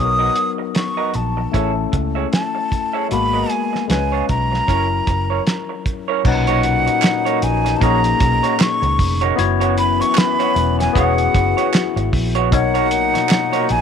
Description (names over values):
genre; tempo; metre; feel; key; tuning
lush 1970s-style soul; 76 BPM; 4/4; swing 58% on 16ths; B major; A4 = 440 Hz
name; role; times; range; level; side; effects
breathy jazz flute; melody; 0.0-13.8 s; F#5 to D#6; -20 LUFS; equal; none
barky tine electric piano; accompaniment; 0.0-13.8 s; A#2 to C#5; -22 LUFS; left 13 dB; phaser
vintage muted fingered electric bass; bass; 0.0-13.8 s; E1 to C#2; -20 LUFS; right 2 dB; none
electric guitar through a small old amp; riff; 0.2-13.7 s; A#3 to E5; -24 LUFS; right 14 dB; none
cloth-damped thuddy drum kit; drums; 0.4-13.8 s; crash cymbal, hi-hat, kick drum, snare drum; -20 LUFS; right 1 dB; none
clear trombone section; stabs; 6.2-13.8 s; F#2 to D#4; -24 LUFS; left 13 dB; none
group handclap; percussion; 7.0-13.5 s; none; -25 LUFS; right 15 dB; none
room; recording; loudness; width
light reverb; 1960s-style stereo with parts hard left and right; -15 LUFS; side -7 dB against mid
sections
0.0-6.2 A section; 6.2-13.8 B section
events
none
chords
0.0 Bmaj7; 1.5 Amaj7; 3.1 G#m9; 3.9 C#7; 4.7 F#7; 6.2 Bmaj9; 9.4 F#7sus4; 12.5 Bmaj9